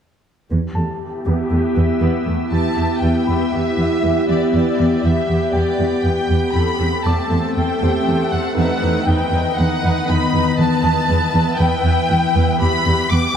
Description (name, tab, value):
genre	cinematic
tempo	119 BPM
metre	4/4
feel	straight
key	E minor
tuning	A4 = 442 Hz
part	dark studio viola section	accompaniment	0.5-13.4 s	A3 to B4	-24 LUFS	equal	low-pass filter
part	organ-like drone	sustained chords	1.2-13.4 s	D#3 to G5	-20 LUFS	equal	ensemble chorus, built-in reverb, low-pass filter
part	rich symphonic cello section	bass	0.5-13.2 s	E2	-19 LUFS	right 1 dB	none
part	clear grand piano	texture	0.7-13.4 s	G4 to D6	-31 LUFS	equal	digital delay
part	warm symphonic violin section	melody	2.5-13.4 s	D5 to D6	-22 LUFS	left 3 dB	low-pass filter
room	wet scoring stage reverb, RT60 2.1 s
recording	dark, warm production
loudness	-15 LUFS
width	side -8 dB against mid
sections	0.5-2.5 A section; 2.5-13.4 B section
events	filter sweep 0.5-2.5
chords	0.5 Em; 6.5 Am7/E; 8.6 B/E; 10.6 Em; 12.6 G/E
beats	| 0.50 1.00 1.51 2.01 | 2.52 3.02 3.52 4.03 | 4.53 5.04 5.54 6.05 | 6.55 7.05 7.56 8.06 | 8.57 9.07 9.57 10.08 | 10.58 11.09 11.59 12.10 | 12.60 13.11